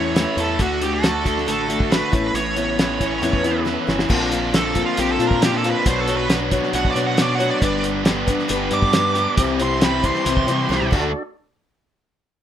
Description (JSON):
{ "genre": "folk rock and heartland rock", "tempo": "137 BPM", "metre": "4/4", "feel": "straight", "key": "D major", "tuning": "A4 = 440 Hz", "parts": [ { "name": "smooth overdriven lead guitar", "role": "melody", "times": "0.0-10.9 s", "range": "F4 to D6", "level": "-23 LUFS", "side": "right 3 dB", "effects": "slapback echo" }, { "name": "picked steel-string acoustic guitar", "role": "accompaniment", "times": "0.0-11.1 s", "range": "A2 to C#5", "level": "-24 LUFS", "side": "left 5 dB", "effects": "none" }, { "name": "tonewheel organ", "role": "sustained chords", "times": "0.0-11.2 s", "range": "A3 to D5", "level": "-34 LUFS", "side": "right 1 dB", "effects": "none" }, { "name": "crunchy overdriven guitar", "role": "riff", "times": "0.0-11.1 s", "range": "G2 to G4", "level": "-23 LUFS", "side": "right 1 dB", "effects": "none" }, { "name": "fingered electric bass", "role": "bass", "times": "0.0-11.1 s", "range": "G1 to C3", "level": "-28 LUFS", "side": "equal", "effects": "none" }, { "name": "cloth-damped thuddy drum kit", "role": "drums", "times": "0.2-11.0 s", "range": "crash cymbal, hi-hat, kick drum, snare drum, toms", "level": "-21 LUFS", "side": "equal", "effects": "none" } ], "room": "light reverb", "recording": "rough home demo mix", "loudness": "-17 LUFS", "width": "side -10 dB against mid", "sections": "0.0-4.1 A section; 4.1-11.1 B section; 11.1-12.4 C section", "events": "drum fill 3.7-4.1, 10.7-11.1; lead electric guitar solo 4.1-11.1", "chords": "0.0 A; 0.6 D; 2.1 Aadd9; 4.1 Bbadd9; 5.9 Bmadd9; 7.6 G; 9.4 C; 10.9 D" }